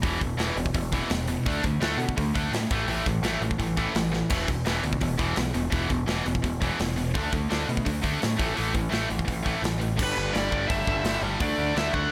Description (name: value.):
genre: punk rock.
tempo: 169 BPM.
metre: 4/4.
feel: straight.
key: unclear.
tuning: A4 = 442 Hz.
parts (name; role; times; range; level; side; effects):
tight distorted guitar; riff; 0.0-12.1 s; E2 to D4; -34 LUFS; equal; distortion.
tight distorted guitar; riff; 0.0-12.1 s; E2 to D4; -32 LUFS; equal; distortion.
growling picked electric bass; bass; 0.0-12.1 s; E1 to B2; -33 LUFS; equal; overdrive.
big rock drum kit; drums; 0.0-12.0 s; crash cymbal, hi-hat, kick drum, snare drum; -32 LUFS; equal; none.
high-gain lead guitar; melody; 10.0-12.1 s; B4 to F#5; -31 LUFS; equal; distortion, digital delay.
room: little or no reverb.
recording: none.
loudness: -26 LUFS.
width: mono.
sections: 0.0-10.0 A section; 10.0-12.1 B section.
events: drum fill 4.1.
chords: 0.0 E5; 1.5 D5; 2.7 A5; 4.3 E5; 7.1 D5; 8.4 A5; 10.0 G; 11.4 D.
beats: | 0.03 0.38 0.74 1.10 | 1.45 1.81 2.17 2.52 | 2.88 3.23 3.59 3.95 | 4.30 4.66 5.01 5.37 | 5.72 6.08 6.43 6.79 | 7.15 7.50 7.86 8.21 | 8.56 8.92 9.28 9.63 | 9.98 10.34 10.69 11.05 | 11.40 11.76 12.11.